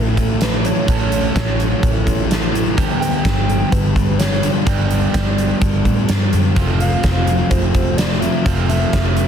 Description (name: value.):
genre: rock, shoegaze and dream pop.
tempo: 127 BPM.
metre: 4/4.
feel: straight.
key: unclear.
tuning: A4 = 444 Hz.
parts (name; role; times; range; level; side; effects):
pure sine lead; melody; 0.0-9.3 s; A4 to G5; -26 LUFS; equal; chorus, slapback echo.
crunchy overdriven guitar; riff; 0.0-9.3 s; F2 to A4; -22 LUFS; right 10 dB; reverse reverb.
thick fuzz guitar; riff; 0.0-9.3 s; F2 to A3; -22 LUFS; left 9 dB; distortion, analog chorus.
vintage muted fingered electric bass; bass; 0.0-9.3 s; F1 to A2; -20 LUFS; equal; none.
huge arena drum kit; drums; 0.2-9.3 s; hi-hat, kick drum, snare drum; -18 LUFS; equal; none.
room: studio reverb.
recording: dense, heavily limited modern master.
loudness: -14 LUFS.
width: side -8 dB against mid.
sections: 0.0-9.3 A section.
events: none.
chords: 0.0 A; 2.8 G; 6.6 Fmaj7.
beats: 0.41 | 0.88 1.36 1.83 2.30 | 2.78 3.25 3.72 4.20 | 4.67 5.14 5.62 6.09 | 6.56 7.04 7.51 7.99 | 8.46 8.93.